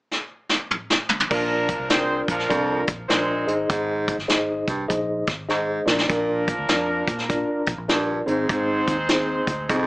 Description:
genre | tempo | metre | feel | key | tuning
uptempo 1960s-style soul | 100 BPM | 4/4 | swing 64% on 8ths | Bb mixolydian | A4 = 440 Hz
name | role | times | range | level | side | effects
vintage brush drum kit | drums | 0.1-9.9 s | crash cymbal, hi-hat, kick drum, snare drum, toms | -22 LUFS | equal | none
clear horn section | second line | 1.3-9.9 s | F3 to C5 | -26 LUFS | right 1 dB | analog delay
mellow tine electric piano | accompaniment | 1.3-9.9 s | C4 to Eb5 | -25 LUFS | left 1 dB | medium stereo tremolo
raspy baritone saxophone | riff | 1.3-9.9 s | F2 to Bb2 | -26 LUFS | right 2 dB | none
vintage muted fingered electric bass | bass | 1.3-9.9 s | G1 to Bb2 | -35 LUFS | equal | none
room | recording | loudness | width
moderate studio reverb, RT60 0.6 s | small speaker sound | -20 LUFS | side -22 dB against mid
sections
0.0-1.3 A section; 1.3-6.1 B section; 6.1-9.9 C section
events
drum fill 0.1-1.3, 5.5-6.1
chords
0.0 N.C.; 1.3 Bb; 3.4 Ab; 5.8 Bb; 8.2 Ab

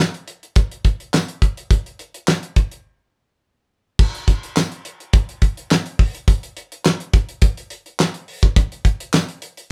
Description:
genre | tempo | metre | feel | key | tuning
funk | 105 BPM | 4/4 | straight | none | none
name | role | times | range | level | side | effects
damped 70s drum kit | drums | 0.1-9.7 s | crash cymbal, handclaps, hi-hat, kick drum, snare drum | -18 LUFS | equal | none
tambourine | percussion | 1.1-9.3 s | none | -33 LUFS | equal | none
room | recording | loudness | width
light reverb | band playing live in one room | -20 LUFS | mono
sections
0.0-4.0 A section; 4.0-9.7 B section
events
break 2.8-4.0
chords
none

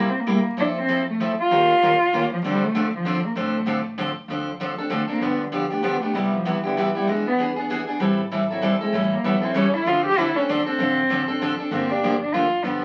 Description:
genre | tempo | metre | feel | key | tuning
acoustic string swing (jazz manouche) | 194 BPM | 3/4 | swing 59% on 8ths | D minor | A4 = 443 Hz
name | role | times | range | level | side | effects
dark cello | melody | 0.0-12.8 s | D3 to G4 | -24 LUFS | equal | none
picked steel-string acoustic guitar | accompaniment | 0.0-12.8 s | C3 to Bb4 | -26 LUFS | equal | none
upright bass | bass | 0.0-12.8 s | G1 to F2 | -40 LUFS | equal | none
room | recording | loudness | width
wet studio ambience, RT60 0.5 s | very old 78 rpm record, vinyl crackle | -22 LUFS | mono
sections
0.0-4.3 A section; 4.3-11.7 B section; 11.7-12.8 B section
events
cello solo 4.3-12.8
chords
0.0 C7; 0.6 Fmaj7; 1.5 Eb9; 2.4 Dm7; 5.2 G7; 6.2 Cmaj7; 7.1 E7; 8.0 Am7; 8.9 A7; 9.9 Dm7; 11.7 Gm7

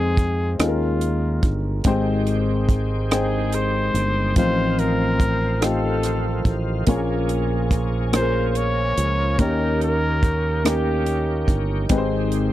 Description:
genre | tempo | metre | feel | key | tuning
slow gospel | 48 BPM (dotted quarters) | 6/8 | straight | Ab major | A4 = 440 Hz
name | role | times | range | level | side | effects
clear trumpet | melody | 0.0-11.6 s | F4 to Db5 | -25 LUFS | left 1 dB | none
clear upright piano | accompaniment | 0.0-12.5 s | Ab2 to G5 | -24 LUFS | left 2 dB | none
fingered electric bass | bass | 0.0-12.5 s | G1 to F2 | -23 LUFS | right 1 dB | none
tight funk drum kit | drums | 0.2-12.5 s | hi-hat, kick drum, rim click | -21 LUFS | right 1 dB | none
bright tonewheel organ | sustained chords | 1.9-12.5 s | Eb3 to G5 | -30 LUFS | right 3 dB | slow rotary speaker, overdrive, chorus vibrato
room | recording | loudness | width
little or no reverb | dry, close 1970s-style studio recording | -18 LUFS | side -14 dB against mid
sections
0.0-12.5 A section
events
none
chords
0.0 Fm7; 0.6 Eb9sus4; 1.8 Abmaj7; 4.4 F7/A; 6.9 Bbm7; 9.4 Eb7; 11.9 Abmaj7

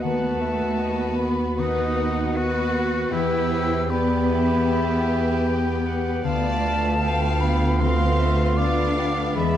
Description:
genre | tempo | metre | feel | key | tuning
classical | 77 BPM | 4/4 | rubato | E minor | A4 = 440 Hz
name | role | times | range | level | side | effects
rich studio violin section | melody | 0.0-9.6 s | B4 to F5 | -33 LUFS | left 3 dB | none
bright clarinet | second line | 0.0-9.6 s | B4 to G5 | -33 LUFS | left 2 dB | none
hollow concert flute | second line | 0.0-9.6 s | A5 to F#6 | -29 LUFS | equal | none
rich studio violin section | second line | 0.0-9.6 s | F4 to A4 | -36 LUFS | left 1 dB | none
warm oboe | second line | 0.0-9.6 s | D5 to G5 | -35 LUFS | right 1 dB | none
rich studio viola section | accompaniment | 0.0-9.6 s | G#3 to B3 | -31 LUFS | right 1 dB | none
warm bassoon | accompaniment | 0.0-9.6 s | G#3 to B3 | -30 LUFS | right 1 dB | none
dark French horn section | sustained chords | 0.0-9.6 s | G#3 to G4 | -31 LUFS | left 4 dB | none
concert harp | arpeggios | 0.0-9.6 s | D3 to B5 | -33 LUFS | left 7 dB | none
clear studio cello section | bass | 0.0-9.6 s | A3 to F#4 | -27 LUFS | equal | none
clear studio double bass section | bass | 0.0-9.6 s | D2 to E2 | -25 LUFS | right 1 dB | none
room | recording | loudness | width
moderate scoring stage reverb, RT60 1.8 s | dark, warm production | -20 LUFS | side -10 dB against mid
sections
0.0-9.6 A section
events
none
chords
0.0 B7/D#; 3.1 Em; 6.2 Bm7b5/D

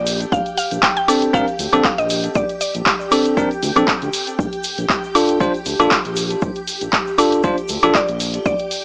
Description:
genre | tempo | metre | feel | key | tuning
deep house | 118 BPM | 4/4 | swing 54% on 16ths | Bb major | A4 = 440 Hz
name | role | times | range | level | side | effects
mallet-like synth pluck | melody | 0.0-3.1, 7.9-8.8 s | D5 to G5 | -24 LUFS | equal | chorus, analog delay
smooth gliding synth bass | bass | 0.0-8.5 s | Bb1 to D2 | -27 LUFS | equal | sidechain pumping
string machine, violins | texture | 0.0-8.8 s | G4 to G5 | -30 LUFS | equal | ensemble chorus
punchy analog drum machine | drums | 0.1-8.8 s | handclaps, hi-hat, woodblock | -21 LUFS | equal | small room ambience
tube shaker | percussion | 0.1-8.8 s | none | -37 LUFS | equal | none
electronic kick drum | drums | 0.3-8.6 s | none | -27 LUFS | equal | overdrive, small room ambience
bell-like tine electric piano | stabs | 1.1-8.0 s | C4 to C5 | -21 LUFS | equal | sidechain pumping, tape echo
room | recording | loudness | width
light reverb | dry, gritty hardware recording, small speaker sound | -18 LUFS | mono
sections
0.0-8.8 A section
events
none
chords
0.0 Bbmaj9; 4.4 Dm/Bb

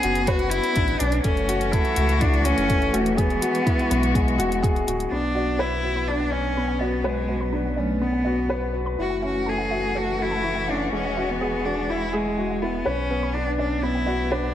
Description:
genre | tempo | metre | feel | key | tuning
piano and strings electronica | 124 BPM | 4/4 | straight | B dorian | A4 = 442 Hz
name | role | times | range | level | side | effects
clear cello | melody | 0.0-14.5 s | F#3 to G#4 | -26 LUFS | left 1 dB | none
muted string quartet | sustained chords | 0.0-14.5 s | E3 to F#4 | -30 LUFS | equal | sidechain pumping
felt-muted upright piano | riff | 0.0-14.5 s | G#3 to B4 | -26 LUFS | left 1 dB | none
warm sub bass | bass | 0.0-14.5 s | D1 to C#2 | -28 LUFS | equal | sidechain pumping
electronic hi-hat | drums | 0.0-5.1 s | none | -33 LUFS | left 1 dB | none
electronic kick drum | drums | 0.3-4.7 s | none | -24 LUFS | equal | none
warbly dusty pluck | arpeggios | 5.1-14.4 s | G#4 to B5 | -37 LUFS | right 3 dB | none
room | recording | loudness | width
moderate recital hall reverb, RT60 1.6 s, small room reverb | none | -21 LUFS | side -11 dB against mid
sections
0.0-5.1 A section; 5.1-14.5 B section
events
none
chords
0.0 Bmadd9; 1.2 F#m7; 3.2 Eadd9; 5.1 Bmadd9; 9.0 F#m7; 10.9 Eadd9; 12.9 Bmadd9

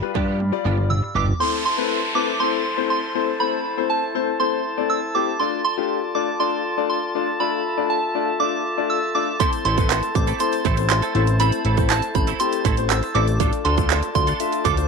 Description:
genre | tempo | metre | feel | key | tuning
dance-pop | 120 BPM | 4/4 | straight | A minor | A4 = 439 Hz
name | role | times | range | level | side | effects
soft synth bell | melody | 0.0-14.9 s | A5 to E6 | -24 LUFS | right 4 dB | chorus, slapback echo
clear concert grand piano | accompaniment | 0.0-14.9 s | G3 to E5 | -25 LUFS | left 13 dB | sidechain pumping
warm brass ensemble | sustained chords | 0.0-14.9 s | E4 to B5 | -28 LUFS | left 2 dB | sidechain pumping
direct-recorded clean electric guitar | riff | 0.0-1.3, 9.4-14.8 s | F3 to A4 | -28 LUFS | right 12 dB | ensemble chorus
fat analog bass | bass | 0.0-1.3, 9.7-14.9 s | G1 to G2 | -21 LUFS | equal | sidechain pumping
pop drum kit | drums | 0.2-1.4, 9.4-14.9 s | handclaps, hi-hat, kick drum, toms | -23 LUFS | right 4 dB | none
downlifter | sound effects | 1.4-5.4 s | none | -29 LUFS | equal | none
egg shaker | percussion | 9.4-14.9 s | none | -41 LUFS | left 23 dB | none
room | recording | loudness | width
light reverb | 1960s-style stereo with parts hard left and right | -18 LUFS | side -4 dB against mid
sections
0.0-1.4 A section; 1.4-14.9 B section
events
drum fill 0.4-1.4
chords
0.0 G7; 1.4 Am; 5.4 Dm; 9.4 Am; 13.4 Dm

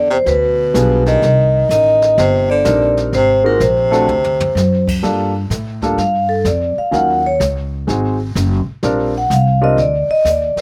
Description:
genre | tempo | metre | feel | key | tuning
jazz, small-group swing and bop | 126 BPM | 4/4 | swing 67% on 8ths | G minor from 5.0 s | A4 = 440 Hz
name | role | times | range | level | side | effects
vibraphone with medium mallets | melody | 0.0-10.6 s | A4 to Gb5 | -16 LUFS | equal | slapback echo
clear baritone saxophone | second line | 0.0-4.8 s | Bb2 to Eb3 | -25 LUFS | equal | none
upright bass | bass | 0.0-10.6 s | Gb1 to A2 | -20 LUFS | equal | none
jazz brush drum kit | drums | 0.1-10.6 s | brushed snare drum, crash cymbal, hi-hat, kick drum, snare drum, toms | -30 LUFS | equal | slapback echo
warm concert grand piano | accompaniment | 0.7-9.8 s | Gb3 to Bb4 | -21 LUFS | equal | none
room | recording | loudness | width
little or no reverb | recorded outdoors, with no room sound | -15 LUFS | mono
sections
0.0-5.0 A section; 5.0-10.6 B section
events
drum fill 4.1-4.5; vibraphone solo 5.0-10.6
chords
0.3 G7b9; 1.2 Cm7; 3.1 Ab9; 4.1 D7; 5.0 Gm7; 6.9 Ebm7; 7.9 Ab7; 8.8 Bb69

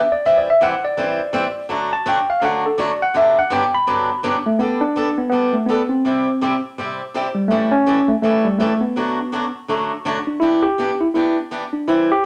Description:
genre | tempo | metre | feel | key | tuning
country | 165 BPM | 4/4 | swing 63% on 8ths | G major | A4 = 442 Hz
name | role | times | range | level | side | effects
tine electric piano | melody | 0.0-12.3 s | G3 to B5 | -19 LUFS | equal | none
picked swing-style acoustic guitar | accompaniment | 0.3-12.1 s | G2 to C5 | -24 LUFS | equal | none
room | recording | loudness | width
moderate studio reverb, RT60 0.7 s | none | -19 LUFS | mono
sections
0.0-4.6 A section; 4.6-12.3 B section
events
tine electric piano solo 0.0-4.6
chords
0.2 C/E; 1.7 D; 3.1 Gmaj7; 4.6 Gadd9; 6.1 C; 7.5 A7; 9.0 D; 10.4 Em7

